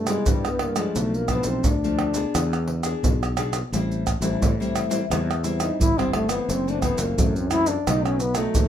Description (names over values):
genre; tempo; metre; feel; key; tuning
samba and choro; 87 BPM; 4/4; straight; unclear; A4 = 440 Hz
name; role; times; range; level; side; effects
breathy trombone; melody; 0.0-8.7 s; G3 to E4; -25 LUFS; equal; none
nylon-string guitar; accompaniment; 0.0-8.7 s; F#2 to Ab4; -28 LUFS; left 4 dB; none
sustaining fretless electric bass; bass; 0.0-8.7 s; F#1 to A2; -27 LUFS; equal; none
maracas, pandeiro, tamborim and surdo; percussion; 0.1-8.7 s; none; -24 LUFS; right 1 dB; none
room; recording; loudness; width
light reverb; minimal, uncompressed stereo recording; -21 LUFS; side -10 dB against mid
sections
0.0-8.7 A section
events
trombone solo 0.0-8.7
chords
0.0 Cmaj7; 1.0 Bm7b5; 2.3 E7; 3.7 Am7; 6.5 F#m7b5; 7.9 B7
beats
0.27 | 0.96 1.66 2.35 3.04 | 3.73 4.42 5.11 5.80 | 6.50 7.19 7.88 8.57